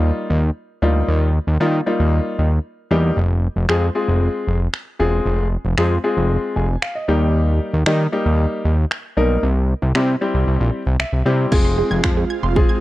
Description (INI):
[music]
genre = dance-pop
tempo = 115 BPM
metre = 4/4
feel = straight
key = F minor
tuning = A4 = 440 Hz
[part]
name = clear baby grand piano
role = accompaniment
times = 0.0-12.8 s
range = G3 to Ab5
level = -21 LUFS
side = left 2 dB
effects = none
[part]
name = fat analog bass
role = bass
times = 0.0-12.6 s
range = E1 to Eb3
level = -17 LUFS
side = equal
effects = sidechain pumping
[part]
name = pop drum kit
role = drums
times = 3.7-12.7 s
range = crash cymbal, finger snaps, kick drum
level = -20 LUFS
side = equal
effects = none
[part]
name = airy breathy pad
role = sustained chords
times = 11.5-12.8 s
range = Ab3 to F4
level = -25 LUFS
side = right 6 dB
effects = chorus, phaser, sidechain pumping
[part]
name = analog pluck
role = arpeggios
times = 11.5-12.8 s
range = Ab4 to Ab6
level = -25 LUFS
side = right 8 dB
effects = chorus, sidechain pumping, tape echo
[sound]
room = little or no reverb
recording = dry, close 1970s-style studio recording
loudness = -16 LUFS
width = side -16 dB against mid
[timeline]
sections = 0.0-11.5 A section; 11.5-12.8 B section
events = grand piano fill 6.3-7.3, 10.7-11.5; kick muted 9.4-11.5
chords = 0.0 Eb; 3.2 Fm; 7.1 Eb; 9.4 C; 11.5 Fm